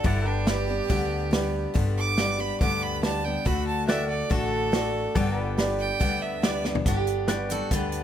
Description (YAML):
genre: honky-tonk and classic country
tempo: 141 BPM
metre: 4/4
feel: straight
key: G major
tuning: A4 = 440 Hz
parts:
  - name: clear fiddle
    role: second line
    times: 0.0-6.6 s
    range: D4 to D6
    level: -30 LUFS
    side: right 4 dB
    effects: none
  - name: picked steel-string acoustic guitar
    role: accompaniment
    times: 0.0-8.0 s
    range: G2 to B4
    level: -30 LUFS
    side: left 6 dB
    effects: none
  - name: pedal steel guitar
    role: sustained chords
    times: 0.0-8.0 s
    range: A4 to G5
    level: -36 LUFS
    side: left 2 dB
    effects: none
  - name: upright bass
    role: bass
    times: 0.0-8.0 s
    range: G1 to D2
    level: -30 LUFS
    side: equal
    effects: none
  - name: natural country drum kit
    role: drums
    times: 0.0-8.0 s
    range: hi-hat, kick drum, snare drum, toms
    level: -27 LUFS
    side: equal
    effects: none
  - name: warm grand piano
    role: accompaniment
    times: 0.5-7.7 s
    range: F#4 to D5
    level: -33 LUFS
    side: right 4 dB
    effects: none
  - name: picked steel-string acoustic guitar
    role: melody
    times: 6.9-8.0 s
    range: D4 to B4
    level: -29 LUFS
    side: right 6 dB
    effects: none
room: light reverb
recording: none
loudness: -23 LUFS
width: side -10 dB against mid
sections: 0.0-6.9 A section; 6.9-8.0 B section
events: fiddle solo 0.0-6.9; drum fill 6.6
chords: 0.0 G; 3.5 D; 5.2 G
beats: | 0.05 0.47 0.90 1.33 | 1.75 2.18 2.60 3.03 | 3.46 3.88 4.31 4.73 | 5.16 5.58 6.01 6.44 | 6.86 7.29 7.71